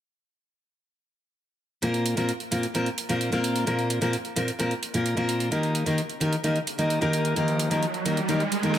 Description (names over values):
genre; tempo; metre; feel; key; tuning
EDM, festival progressive house; 130 BPM; 4/4; straight; unclear; A4 = 440 Hz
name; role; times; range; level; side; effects
fingerpicked steel-string acoustic guitar; accompaniment; 1.8-8.8 s; Bb2 to Bb4; -24 LUFS; left 1 dB; dub echo
big-room dance drum kit; drums; 1.8-8.8 s; hi-hat, snare drum; -33 LUFS; right 4 dB; none
riser; sound effects; 6.8-8.8 s; none; -31 LUFS; right 4 dB; none
room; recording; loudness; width
light reverb; none; -23 LUFS; side -10 dB against mid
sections
1.8-8.8 A section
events
riser 6.8-8.8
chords
1.8 Bbsus2; 5.5 Eb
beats
| 1.83 2.29 2.75 3.21 | 3.67 4.13 4.59 5.06 | 5.52 5.98 6.44 6.90 | 7.36 7.83 8.29 8.75